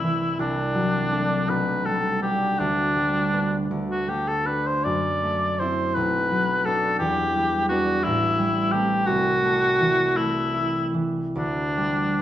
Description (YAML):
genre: classical, romantic duo for cor anglais and harp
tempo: 48-59 BPM (dotted quarters)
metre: 6/8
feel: rubato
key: G major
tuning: A4 = 440 Hz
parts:
  - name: warm cor anglais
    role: melody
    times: 0.0-12.2 s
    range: D4 to D5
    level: -23 LUFS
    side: left 1 dB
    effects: none
  - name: concert harp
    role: accompaniment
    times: 0.0-12.2 s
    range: A1 to E4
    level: -25 LUFS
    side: equal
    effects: none
room: wet recital hall reverb, RT60 1.7 s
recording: small room ambience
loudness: -21 LUFS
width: side -12 dB against mid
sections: 0.0-12.2 A section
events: none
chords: 0.4 D7/C; 1.5 G/B; 2.6 G/D; 3.7 D5; 4.8 F#m7b5; 6.0 Bm; 7.0 Em7; 8.1 Am7; 9.1 Am/C; 11.4 G5/D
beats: | 0.39 1.49 | 2.59 3.71 | 4.84 5.96 | 6.99 8.05 | 9.08 10.18 | 11.35